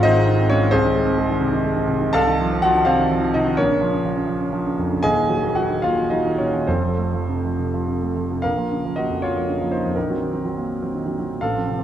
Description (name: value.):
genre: classical, romantic character piece for solo piano.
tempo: 64-88 BPM (dotted quarters).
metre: 6/8.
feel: rubato.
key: Bb minor.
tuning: A4 = 445 Hz.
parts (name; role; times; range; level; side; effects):
warm grand piano; solo; 0.0-11.8 s; Eb1 to A5; -18 LUFS; equal; none.
room: moderate scoring stage reverb, RT60 1.5 s.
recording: none.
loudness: -18 LUFS.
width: side -10 dB against mid.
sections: 0.0-8.4 A section; 8.4-11.8 B section.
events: none.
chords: 0.0 Ab; 0.7 Ab/C; 2.1 F7/C; 3.6 Bbm; 5.0 Ebm; 6.7 F; 8.4 Bbm; 10.0 Cm7b5/Bb.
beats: 0.02 | 0.72 1.40 | 2.13 2.85 | 3.57 4.28 | 5.04 5.83 | 6.68 7.59 | 8.44 9.22 | 9.96 10.69 | 11.41.